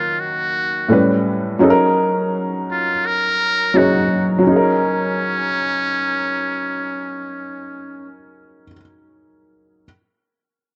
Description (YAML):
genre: hip hop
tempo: 84 BPM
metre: 4/4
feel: swing 55% on 16ths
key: F# major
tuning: A4 = 440 Hz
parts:
  - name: trumpet with metal mute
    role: melody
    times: 0.0-8.1 s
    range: C#4 to A#4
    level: -23 LUFS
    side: equal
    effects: low-pass filter
  - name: felt-muted upright piano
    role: accompaniment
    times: 0.0-9.9 s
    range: A2 to C#5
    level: -19 LUFS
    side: equal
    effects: low-pass filter
room: moderate spring reverb, RT60 2.0 s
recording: cassette tape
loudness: -18 LUFS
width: mono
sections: 0.0-4.5 A section; 4.5-7.3 B section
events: none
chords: 0.0 D#m9; 0.9 A9; 1.6 F#6